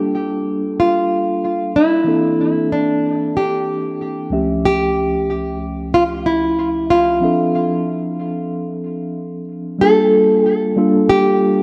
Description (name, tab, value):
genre	chillout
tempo	93 BPM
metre	4/4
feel	straight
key	G dorian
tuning	A4 = 437 Hz
part	nylon-string guitar	melody	0.0-11.6 s	D4 to A4	-19 LUFS	equal	tape echo
part	mellow tine electric piano	accompaniment	0.0-11.6 s	C#2 to E5	-21 LUFS	equal	tape echo
room	wet plate reverb, RT60 2.5 s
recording	echo-heavy mix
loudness	-17 LUFS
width	mono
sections	0.0-9.8 A section; 9.8-11.6 B section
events	none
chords	0.0 Gm9; 2.1 C13; 4.3 A7b13/C#; 7.2 Dm9; 9.8 Gm9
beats	0.12 0.77 1.42 | 2.06 2.71 3.35 4.00 | 4.64 5.29 5.93 6.58 | 7.22 7.87 8.51 9.16 | 9.80 10.45 11.09